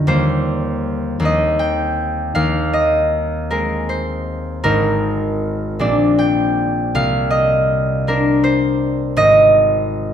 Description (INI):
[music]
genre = classical, solo harp piece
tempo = 53 BPM (dotted quarters)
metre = 6/8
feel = uneven beats, rubato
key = Eb major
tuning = A4 = 440 Hz
[part]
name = concert harp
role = solo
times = 0.0-10.1 s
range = F1 to G5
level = -14 LUFS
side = equal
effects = none
[sound]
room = moderate recital hall reverb, RT60 1.5 s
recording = none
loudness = -14 LUFS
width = side -9 dB against mid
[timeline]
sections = 0.1-10.1 A section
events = none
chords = 0.1 Eb69; 1.2 Cm7/Eb; 2.3 Fm7/Eb; 4.6 Abadd9; 5.8 Bb13; 7.0 Cm11; 9.2 Abmaj7